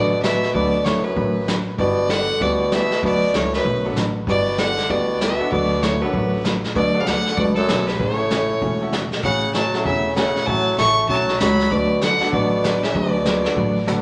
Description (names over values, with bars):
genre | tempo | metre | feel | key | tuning
country, western swing | 194 BPM | 4/4 | swing 62% on 8ths | D major | A4 = 439 Hz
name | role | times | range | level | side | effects
bright fiddle | melody | 0.0-13.9 s | A4 to C#6 | -25 LUFS | equal | none
mellow bassoon | second line | 0.0-13.9 s | F#2 to A3 | -25 LUFS | equal | none
clear upright piano | accompaniment | 0.0-1.4, 3.9-14.0 s | Bb3 to B4 | -32 LUFS | equal | none
hollow-body jazz guitar | accompaniment | 0.0-14.0 s | C#3 to B4 | -27 LUFS | equal | none
upright bass | bass | 0.0-14.0 s | E1 to D2 | -29 LUFS | equal | none
vintage brush drum kit | drums | 0.2-14.0 s | brushed snare drum, hi-hat, kick drum, snare drum, toms | -29 LUFS | equal | none
room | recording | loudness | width
wet large studio reverb, RT60 1.2 s | none | -20 LUFS | mono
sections
0.0-14.0 A section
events
none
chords
0.0 D6; 1.8 G6; 3.0 D6; 4.3 G6; 5.5 D6; 8.0 A6; 11.7 D6